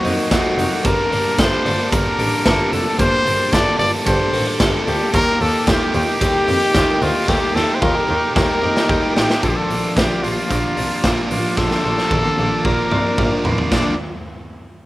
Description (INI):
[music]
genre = jangly indie pop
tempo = 112 BPM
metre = 4/4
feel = straight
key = Bb major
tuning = A4 = 442 Hz
[part]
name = clear trumpet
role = melody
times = 0.0-14.0 s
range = F4 to D5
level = -21 LUFS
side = left 1 dB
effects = none
[part]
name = biting overdriven guitar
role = accompaniment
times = 0.0-13.9 s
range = G2 to A4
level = -24 LUFS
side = right 2 dB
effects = slapback echo
[part]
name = warbly lo-fi synth keys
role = accompaniment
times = 0.0-14.0 s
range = Bb3 to A5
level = -26 LUFS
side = right 2 dB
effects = chorus
[part]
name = clean electric guitar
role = arpeggios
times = 0.0-13.9 s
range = F3 to A4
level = -23 LUFS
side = left 2 dB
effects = phaser, slapback echo
[part]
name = bright double bass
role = bass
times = 0.0-13.8 s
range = F1 to F2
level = -24 LUFS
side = equal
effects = none
[part]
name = raw garage drum kit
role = drums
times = 0.0-13.8 s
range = china cymbal, hi-hat, kick drum, ride cymbal, snare drum, toms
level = -20 LUFS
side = equal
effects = none
[sound]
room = little or no reverb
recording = none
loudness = -15 LUFS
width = side -17 dB against mid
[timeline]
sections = 0.0-9.4 A section; 9.4-13.7 B section; 13.7-14.9 C section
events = drum fill 7.3-9.4, 11.6-13.7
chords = 0.0 Ebm; 0.9 Gmadd9; 5.1 Eb; 9.4 Bb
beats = 0.31 | 0.85 1.39 1.92 2.46 | 3.00 3.53 4.07 4.60 | 5.14 5.68 6.21 6.75 | 7.29 7.82 8.36 8.89 | 9.43 9.97 10.50 11.04 | 11.58 12.11 12.65 13.18 | 13.72